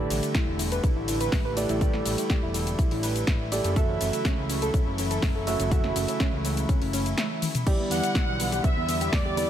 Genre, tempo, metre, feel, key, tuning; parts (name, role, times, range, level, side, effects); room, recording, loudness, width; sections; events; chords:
progressive house; 123 BPM; 4/4; straight; A4 = 437 Hz
dark chamber string section; sustained chords; 0.0-9.5 s; C#3 to E4; -33 LUFS; left 2 dB; sidechain pumping
soft round pluck; arpeggios; 0.0-9.5 s; B3 to B4; -32 LUFS; equal; analog chorus, cassette tape, sidechain pumping, dub echo
felt-muted upright piano; stabs; 0.0-9.5 s; G3 to E5; -31 LUFS; right 4 dB; sidechain pumping, dub echo
fat analog bass; bass; 0.0-9.5 s; E1 to E2; -31 LUFS; equal; sidechain pumping
house drum kit; drums; 0.1-9.5 s; crash cymbal, hi-hat, ride cymbal, shaker, snare drum, toms; -32 LUFS; left 1 dB
electronic kick drum; drums; 0.3-9.2 s; -25 LUFS; equal
wide unison lead; melody; 7.9-9.5 s; D5 to F#5; -30 LUFS; equal; dub echo
rich chamber violin section; second line; 7.9-9.5 s; D5 to F#5; -33 LUFS; right 1 dB; sidechain pumping, dub echo
little or no reverb; -23 LUFS; side -10 dB against mid
0.0-9.5 A section
drum fill 7.4
0.0 A7sus4; 3.8 F#m7; 7.7 Em7